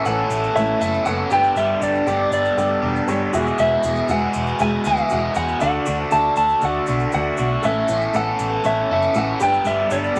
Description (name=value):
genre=folk rock and heartland rock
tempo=119 BPM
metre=4/4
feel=straight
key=A major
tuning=A4 = 440 Hz
part: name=picked steel-string acoustic guitar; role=accompaniment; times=0.0-10.2 s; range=E2 to A4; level=-31 LUFS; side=equal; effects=none
part: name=hand-pumped harmonium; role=sustained chords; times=0.0-10.2 s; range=A3 to A4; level=-34 LUFS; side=equal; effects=none
part: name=overdriven electric guitar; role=riff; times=0.0-10.2 s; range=E2 to A4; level=-25 LUFS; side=equal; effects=phaser
part: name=electric slide guitar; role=melody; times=0.1-10.2 s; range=D5 to A5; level=-23 LUFS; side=equal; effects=none
part: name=warm upright piano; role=accompaniment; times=0.1-10.2 s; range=F#4 to F#5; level=-31 LUFS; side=equal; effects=none
part: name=picked electric bass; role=bass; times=0.1-10.2 s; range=E1 to E2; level=-30 LUFS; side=equal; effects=none
part: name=tube shaker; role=percussion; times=0.1-10.2 s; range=none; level=-44 LUFS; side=equal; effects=none
room=moderate studio reverb, RT60 0.7 s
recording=none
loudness=-20 LUFS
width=mono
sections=0.0-10.2 A section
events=none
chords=0.0 Aadd9; 1.3 Gadd9; 3.3 Eadd9; 5.6 D; 7.6 Aadd9; 9.4 Gadd9